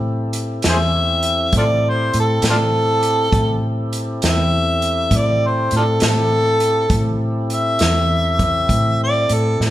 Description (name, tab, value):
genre	slow blues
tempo	67 BPM (dotted quarters)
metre	12/8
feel	straight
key	A minor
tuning	A4 = 443 Hz
part	tonewheel organ	sustained chords	0.0-9.7 s	C4 to A4	-25 LUFS	left 1 dB	slow rotary speaker
part	vintage muted fingered electric bass	bass	0.0-9.7 s	E2 to A2	-20 LUFS	equal	none
part	vintage drum kit	drums	0.3-9.7 s	hi-hat, kick drum, snare drum	-21 LUFS	equal	none
part	warm harmonica	melody	0.7-9.6 s	D4 to E5	-18 LUFS	equal	overdrive
room	moderate large studio reverb, RT60 1.2 s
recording	band playing live in one room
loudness	-15 LUFS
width	side -14 dB against mid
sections	0.0-9.7 A section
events	harmonica solo 0.0-9.7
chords	0.0 Am7